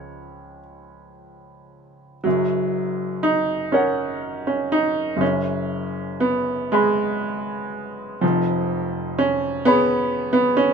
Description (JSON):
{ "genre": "classical, romantic nocturne for solo piano", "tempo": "35-44 BPM (dotted quarters)", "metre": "6/8", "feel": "rubato", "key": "F# major", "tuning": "A4 = 440 Hz", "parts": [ { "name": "clear upright piano", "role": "solo", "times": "0.0-10.7 s", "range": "E#1 to B5", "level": "-19 LUFS", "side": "right 1 dB", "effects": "none" } ], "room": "little or no reverb", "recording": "close, detailed microphones", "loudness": "-19 LUFS", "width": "side -6 dB against mid", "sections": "0.0-2.2 A section; 2.2-10.7 B section", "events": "none", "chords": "0.0 Db; 2.2 F#; 5.2 G#m7/F#; 8.2 C#7/E#" }